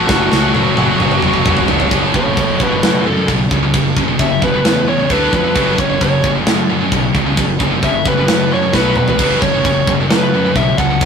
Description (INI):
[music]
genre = heavy metal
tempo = 132 BPM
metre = 4/4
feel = straight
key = F# minor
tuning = A4 = 440 Hz
[part]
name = high-gain lead guitar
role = melody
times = 0.0-11.1 s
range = F#4 to F#5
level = -18 LUFS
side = equal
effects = distortion
[part]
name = scooped high-gain guitar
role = riff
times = 0.0-11.1 s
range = F#2 to D4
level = -16 LUFS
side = equal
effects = distortion
[part]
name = fuzz fingered electric bass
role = bass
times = 0.0-11.1 s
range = E1 to F#2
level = -19 LUFS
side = equal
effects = overdrive
[part]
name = tight metal drum kit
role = drums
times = 0.1-11.1 s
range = crash cymbal, kick drum, snare drum, toms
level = -16 LUFS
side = equal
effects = none
[sound]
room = light reverb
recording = rough rehearsal-room recording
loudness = -12 LUFS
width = side -6 dB against mid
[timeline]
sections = 0.0-1.9 A section; 1.9-11.1 B section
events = drum fill 0.1-1.9, 8.7-9.2; lead electric guitar solo 1.9-11.1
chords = 0.1 F#5; 1.9 F#m; 5.1 D5; 5.6 F#5; 8.7 B5; 9.2 F#5